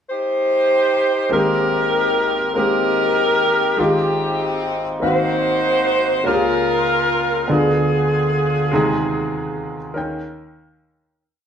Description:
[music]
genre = gospel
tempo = 49 BPM (dotted quarters)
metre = 6/8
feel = straight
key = Ab major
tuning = A4 = 443 Hz
[part]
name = mellow saxophone section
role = melody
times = 0.1-10.4 s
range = B3 to C5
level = -18 LUFS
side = equal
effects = none
[part]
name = warm concert grand piano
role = accompaniment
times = 1.3-11.2 s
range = Ab1 to G5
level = -20 LUFS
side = equal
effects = none
[sound]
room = wet large studio reverb, RT60 1.1 s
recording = band playing live in one room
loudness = -16 LUFS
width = side -8 dB against mid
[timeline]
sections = 0.0-1.3 pickup bar; 1.3-11.2 verse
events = fade-out 8.7-11.2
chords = 0.0 Eb6; 1.3 Abmaj9; 3.8 Fm9/Ab; 5.0 Ab13; 6.3 Db6; 7.5 Ddim7; 8.7 Ab/Eb; 10.0 Eb7

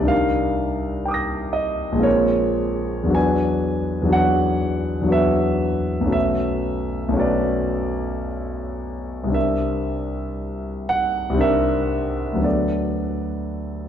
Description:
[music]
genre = classical, impressionist solo piano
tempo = 50-63 BPM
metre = 3/4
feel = rubato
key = unclear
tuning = A4 = 441 Hz
[part]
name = warm concert grand piano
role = solo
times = 0.0-13.9 s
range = Bb1 to Bb6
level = -19 LUFS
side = equal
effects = none
[sound]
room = wet scoring stage reverb, RT60 1.8 s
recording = dark, warm production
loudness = -19 LUFS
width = side -9 dB against mid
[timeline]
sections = 0.0-13.9 A section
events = none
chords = 0.1 Cm9; 2.1 Bbm9; 3.2 E9; 6.1 Bm9; 9.4 C9; 12.5 D6

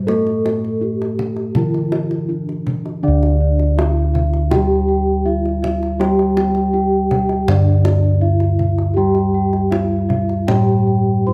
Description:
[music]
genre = Javanese gamelan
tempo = 81 BPM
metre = 4/4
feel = straight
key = unclear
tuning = A4 = 440 Hz
[part]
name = gamelan-type bronze metallophone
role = melody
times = 0.0-11.3 s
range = D4 to C5-40c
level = -24 LUFS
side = equal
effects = none
[part]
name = gamelan-type bronze metallophone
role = accompaniment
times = 0.0-11.3 s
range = D3 to A3+20c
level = -23 LUFS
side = equal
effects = none
[part]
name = gamelan-type bossed gongs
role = bass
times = 0.0-11.3 s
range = D2 to A4+20c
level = -20 LUFS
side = equal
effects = none
[part]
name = kendang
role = percussion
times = 0.1-10.7 s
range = none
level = -26 LUFS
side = equal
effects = none
[part]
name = gamelan-type bronze metallophone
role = arpeggios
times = 3.0-11.3 s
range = D5 to C6-40c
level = -26 LUFS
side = equal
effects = none
[sound]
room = light reverb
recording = close, detailed microphones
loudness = -17 LUFS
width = mono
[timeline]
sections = 0.0-3.0 A section; 3.0-11.3 A section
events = none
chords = none

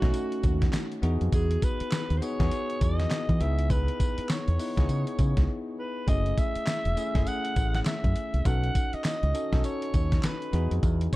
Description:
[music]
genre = R&B, new jack swing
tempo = 101 BPM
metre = 4/4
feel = swing 62% on 16ths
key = F# dorian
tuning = A4 = 442 Hz
[part]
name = growling alto saxophone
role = melody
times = 0.0-11.2 s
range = F#4 to F#5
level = -33 LUFS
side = equal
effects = none
[part]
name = bell-like tine electric piano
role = accompaniment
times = 0.0-11.2 s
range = A3 to B4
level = -33 LUFS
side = left 2 dB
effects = wide subtle chorus
[part]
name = deep dub fingered electric bass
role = bass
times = 0.0-11.1 s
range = E1 to E3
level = -26 LUFS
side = equal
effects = none
[part]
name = dusty soul sampler-style drum kit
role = drums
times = 0.0-11.2 s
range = handclaps, hi-hat, kick drum, snare drum, tambourine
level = -27 LUFS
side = equal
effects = none
[sound]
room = little or no reverb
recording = dark, warm production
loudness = -24 LUFS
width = side -18 dB against mid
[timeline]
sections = 0.0-11.2 A section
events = break 5.5-6.1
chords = 0.0 B7 (rootless); 1.0 Emaj7; 3.4 C#m7; 6.1 F#m7; 8.5 B7; 10.5 Emaj7

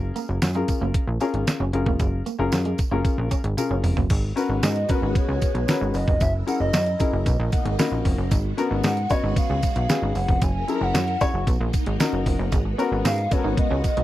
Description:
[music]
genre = early-eighties boogie funk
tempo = 114 BPM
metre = 4/4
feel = straight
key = G# dorian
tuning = A4 = 437 Hz
[part]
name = dark baby grand piano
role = accompaniment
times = 0.0-13.9 s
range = A#3 to B5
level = -27 LUFS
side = left 4 dB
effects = none
[part]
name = plucky analog bass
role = bass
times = 0.0-14.0 s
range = E#1 to G#2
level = -24 LUFS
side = equal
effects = none
[part]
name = clean electric guitar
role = riff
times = 0.2-4.1, 12.5-14.0 s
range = G#3 to D#4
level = -32 LUFS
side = right 4 dB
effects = analog chorus
[part]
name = detuned 8-bit digital drum machine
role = drums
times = 0.2-14.0 s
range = crash cymbal, hi-hat, kick drum, snare drum, toms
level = -23 LUFS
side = right 1 dB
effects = none
[part]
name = tambourine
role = percussion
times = 0.2-14.0 s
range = none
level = -38 LUFS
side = right 10 dB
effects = none
[part]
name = phased string machine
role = sustained chords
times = 4.1-14.0 s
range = B2 to A#4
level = -34 LUFS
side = left 1 dB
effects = ensemble chorus, phaser
[part]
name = hollow clarinet-like synth lead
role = melody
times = 4.6-14.0 s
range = B4 to A#5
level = -28 LUFS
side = right 1 dB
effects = chorus, tape echo
[sound]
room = little or no reverb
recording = dry, close 1970s-style studio recording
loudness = -20 LUFS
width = side -14 dB against mid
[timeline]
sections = 0.0-4.1 A section; 4.1-14.0 B section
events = drum fill 3.6-4.1; grand piano fill 7.3-8.3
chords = 0.0 F#maj9; 4.1 G#m11; 6.2 F#7; 7.3 Bmaj9; 8.3 G#m11; 10.4 F#7; 11.5 Bmaj9; 12.5 G#m11

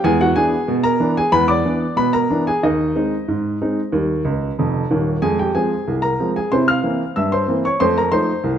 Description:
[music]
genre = ragtime piano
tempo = 93 BPM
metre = 2/4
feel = straight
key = unclear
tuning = A4 = 438 Hz
[part]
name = warm upright piano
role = solo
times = 0.0-8.6 s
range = Eb1 to F6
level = -16 LUFS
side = equal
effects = none
[sound]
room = moderate concert hall reverb, RT60 1.8 s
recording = close, detailed microphones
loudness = -16 LUFS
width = side -9 dB against mid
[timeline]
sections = 0.0-8.6 A section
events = upright piano fill 4.2-5.2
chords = 0.0 E7; 2.6 Ab/Eb; 3.9 Eb; 5.2 Fm; 6.5 C7; 7.8 F7

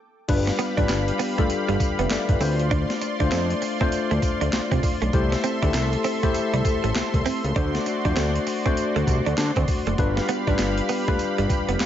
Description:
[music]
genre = R&B, new jack swing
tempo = 99 BPM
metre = 4/4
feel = swing 62% on 16ths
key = unclear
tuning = A4 = 441 Hz
[part]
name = tine electric piano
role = accompaniment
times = 0.3-11.9 s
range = G3 to E5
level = -26 LUFS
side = left 5 dB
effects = none
[part]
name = lush unison pad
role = sustained chords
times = 0.3-11.9 s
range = F4 to C6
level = -29 LUFS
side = right 1 dB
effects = chorus
[part]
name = fat analog bass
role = bass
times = 0.3-11.9 s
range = F1 to D3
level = -25 LUFS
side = equal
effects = none
[part]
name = breakbeat sampler-style drum kit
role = drums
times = 0.3-11.9 s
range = crash cymbal, handclaps, hi-hat, kick drum, snare drum, tambourine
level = -26 LUFS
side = equal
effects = overdrive
[part]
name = direct-recorded clean electric guitar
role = riff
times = 0.5-11.8 s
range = G3 to D4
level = -29 LUFS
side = right 6 dB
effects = lush chorus
[sound]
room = light reverb, digital ambience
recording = nothing above 7.7 kHz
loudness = -20 LUFS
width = side -10 dB against mid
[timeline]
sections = 0.3-11.9 A section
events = stop 0.0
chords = 0.3 G7; 2.4 Dm7; 5.1 C6; 7.6 D7; 10.0 G7

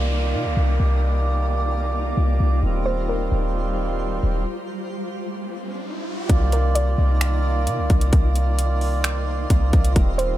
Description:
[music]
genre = hip hop, atmospheric cloud-rap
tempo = 131 BPM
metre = 4/4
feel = half-time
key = C minor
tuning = A4 = 439 Hz
[part]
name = hand-pumped harmonium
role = sustained chords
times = 0.0-10.4 s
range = Eb3 to D5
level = -28 LUFS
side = right 3 dB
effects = low-pass filter
[part]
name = clean 808-style bass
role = bass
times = 0.0-10.4 s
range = Eb1 to C3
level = -20 LUFS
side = equal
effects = none
[part]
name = downlifter and riser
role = sound effects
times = 0.0-6.3 s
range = none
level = -35 LUFS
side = right 1 dB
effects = none
[part]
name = twinkling granular texture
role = texture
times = 0.0-10.4 s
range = G3 to D5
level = -31 LUFS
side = equal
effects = built-in reverb
[part]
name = soft round pluck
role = melody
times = 2.9-3.5, 6.5-7.2, 10.2-10.4 s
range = Bb4 to D5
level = -30 LUFS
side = right 1 dB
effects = chorus, low-pass filter, ping-pong delay
[part]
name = trap drum kit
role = drums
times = 6.3-10.3 s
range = finger snaps, hi-hat, kick drum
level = -20 LUFS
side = equal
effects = none
[sound]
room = digital ambience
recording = none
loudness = -19 LUFS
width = side -14 dB against mid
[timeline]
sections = 0.0-6.3 A section; 6.3-10.4 B section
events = filter sweep 0.0-6.3; stop 4.5-6.3; riser 5.1-6.3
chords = 0.0 Cm11; 2.6 Eb69; 6.3 Cm11

